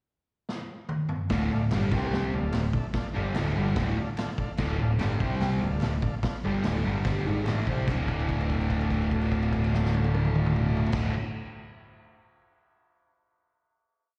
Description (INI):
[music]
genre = garage rock duo or trio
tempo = 146 BPM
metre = 4/4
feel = straight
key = D minor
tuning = A4 = 440 Hz
[part]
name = vintage drum kit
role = drums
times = 0.5-11.0 s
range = crash cymbal, hi-hat, kick drum, snare drum, toms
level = -34 LUFS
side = equal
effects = none
[part]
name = overdriven combo organ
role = sustained chords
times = 1.3-11.1 s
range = G4 to G5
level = -42 LUFS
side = equal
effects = none
[part]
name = fuzz guitar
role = riff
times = 1.3-11.1 s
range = D2 to C4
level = -31 LUFS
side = equal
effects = distortion
[part]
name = growling picked electric bass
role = bass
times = 1.3-11.1 s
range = D1 to C2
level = -31 LUFS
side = equal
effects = overdrive
[part]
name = group handclap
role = percussion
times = 1.7-8.1 s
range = none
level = -50 LUFS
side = equal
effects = none
[sound]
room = light reverb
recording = live gig heard through the venue's PA, cassette tape, recital hall reverb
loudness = -27 LUFS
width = mono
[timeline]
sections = 0.0-1.3 pickup bar; 1.3-7.9 riff; 7.9-11.2 final chord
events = drum fill 0.5-1.3; held note 7.9-10.9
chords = 0.0 N.C.; 1.3 Dm; 1.9 C5; 2.3 Dm; 5.2 C5; 5.6 Dm